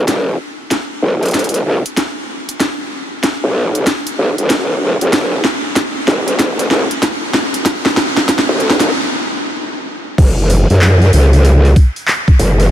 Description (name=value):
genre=glitch hop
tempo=95 BPM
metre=4/4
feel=swing 64% on 16ths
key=unclear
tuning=A4 = 439 Hz
part: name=growl bass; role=bass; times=0.0-12.7 s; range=E1 to F#2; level=-11 LUFS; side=equal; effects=chorus, tube saturation, high-pass filter
part: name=drum and bass drum kit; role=drums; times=0.1-12.7 s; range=crash cymbal, handclaps, hi-hat, snare drum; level=-16 LUFS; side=equal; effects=overdrive
part: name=electronic kick drum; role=drums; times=0.1-12.4 s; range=none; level=-11 LUFS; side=equal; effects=high-pass filter on kick
room=moderate huge ambient reverb, RT60 5.3 s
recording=vinyl crackle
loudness=-11 LUFS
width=side -11 dB against mid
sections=0.0-10.2 A section; 10.2-12.7 B section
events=build-up 0.0-10.2; drum fill 0.1-8.9; stop 8.9-10.2; drop 10.2-12.7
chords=none